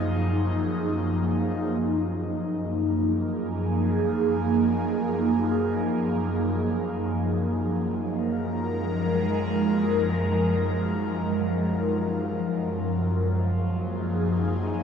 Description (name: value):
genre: ambient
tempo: free time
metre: none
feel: none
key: unclear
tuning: A4 = 440 Hz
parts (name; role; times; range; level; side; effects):
- airy breathy pad; solo; 0.0-14.8 s; Gb2 to Bb4; -23 LUFS; equal; chorus, phaser, diffuse ambient delay
room: wet huge ambient reverb, RT60 8.6 s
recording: dark, warm production, lossy compression artefacts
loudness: -23 LUFS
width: side -7 dB against mid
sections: 0.0-1.8 A section; 1.8-14.8 B section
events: none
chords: 0.0 Gbmaj7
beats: free time